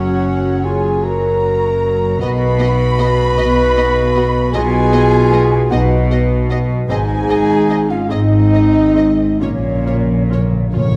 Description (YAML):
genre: cinematic, emotional film score for orchestra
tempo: 44-52 BPM (dotted quarters)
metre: 6/8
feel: rubato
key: unclear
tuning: A4 = 440 Hz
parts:
  - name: warm symphonic violin section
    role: melody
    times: 0.0-11.0 s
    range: Db5 to D#5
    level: -32 LUFS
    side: equal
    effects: none
  - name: dark studio violin section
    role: second line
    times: 0.0-10.7 s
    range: Db5 to B5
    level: -31 LUFS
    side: equal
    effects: none
  - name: mellow hollow concert flute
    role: second line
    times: 0.0-10.7 s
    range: Db5 to B5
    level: -26 LUFS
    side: equal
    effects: none
  - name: warm clarinet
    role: second line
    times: 0.0-10.7 s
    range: Bb3 to F#4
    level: -25 LUFS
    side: equal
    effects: none
  - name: dark chamber viola section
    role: accompaniment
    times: 0.0-10.8 s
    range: Gb3 to Ab4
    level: -30 LUFS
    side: equal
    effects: none
  - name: mellow French horn section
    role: sustained chords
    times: 0.0-10.7 s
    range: Db4 to B4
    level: -19 LUFS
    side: equal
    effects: none
  - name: rich symphonic cello section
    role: bass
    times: 0.0-11.0 s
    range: Gb2 to B2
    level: -21 LUFS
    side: equal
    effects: none
  - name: rich symphonic double bass section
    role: bass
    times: 0.0-11.0 s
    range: Gb1 to B1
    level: -21 LUFS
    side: equal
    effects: none
  - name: timpani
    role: percussion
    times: 9.4-11.0 s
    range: Bb2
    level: -22 LUFS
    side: equal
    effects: none
room: wet scoring stage reverb, RT60 1.4 s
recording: dark, warm production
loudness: -14 LUFS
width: mono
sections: 0.0-11.0 A section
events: timpani fill 9.4-11.0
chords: 0.0 Gb; 2.2 B; 6.9 Ab; 9.4 Bbm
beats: 1.04 | 2.22 3.38 | 4.54 5.71 | 6.89 8.10 | 9.41 10.74